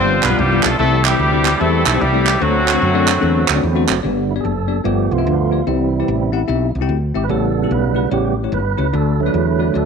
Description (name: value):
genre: uptempo gospel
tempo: 147 BPM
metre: 4/4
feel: swing 64% on 8ths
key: G major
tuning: A4 = 436 Hz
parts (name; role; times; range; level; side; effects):
- clear horn section; melody; 0.0-3.6 s; F#3 to C5; -17 LUFS; left 1 dB; slapback echo
- bell-like tine electric piano; accompaniment; 0.0-9.9 s; G2 to G5; -21 LUFS; left 13 dB; fast stereo tremolo
- tonewheel organ; sustained chords; 0.0-9.9 s; C#3 to B4; -20 LUFS; right 9 dB; slow rotary speaker, overdrive
- woody fretless electric bass; bass; 0.0-9.9 s; F#1 to F#2; -19 LUFS; equal; analog chorus
- group handclap; percussion; 0.2-4.0 s; none; -20 LUFS; right 12 dB; none
room: moderate echo chamber reverb, RT60 1.6 s, small room ambience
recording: 1960s-style stereo with parts hard left and right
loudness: -14 LUFS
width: side -6 dB against mid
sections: 0.0-4.0 A section; 4.0-9.9 B section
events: tonewheel organ solo 4.0-9.9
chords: 0.0 G7; 0.8 C6; 2.4 D7; 4.0 G; 4.9 G7; 5.7 C; 7.3 A7; 8.9 D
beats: 0.38 | 0.79 1.19 1.60 2.00 | 2.41 2.82 3.22 3.63 | 4.04 4.44 4.85 5.26 | 5.67 6.07 6.48 6.89 | 7.30 7.71 8.11 8.52 | 8.93 9.34 9.75